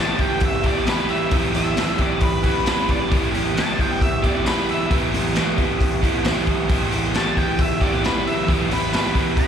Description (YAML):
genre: garage rock duo or trio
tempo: 134 BPM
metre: 4/4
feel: straight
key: E minor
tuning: A4 = 440 Hz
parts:
  - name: octave-fuzz lead guitar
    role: melody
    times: 0.0-9.5 s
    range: B4 to B5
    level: -26 LUFS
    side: left 1 dB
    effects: distortion, slapback echo
  - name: crunchy overdriven guitar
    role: riff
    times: 0.0-9.5 s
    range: E3 to G4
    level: -20 LUFS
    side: right 2 dB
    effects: slapback echo
  - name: raw garage drum kit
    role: drums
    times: 0.2-9.5 s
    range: hi-hat, kick drum, snare drum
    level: -22 LUFS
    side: left 1 dB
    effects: none
room: studio reverb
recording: live gig heard through the venue's PA, recital hall reverb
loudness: -18 LUFS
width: side -8 dB against mid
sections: 0.0-9.5 A section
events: none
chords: 0.0 Em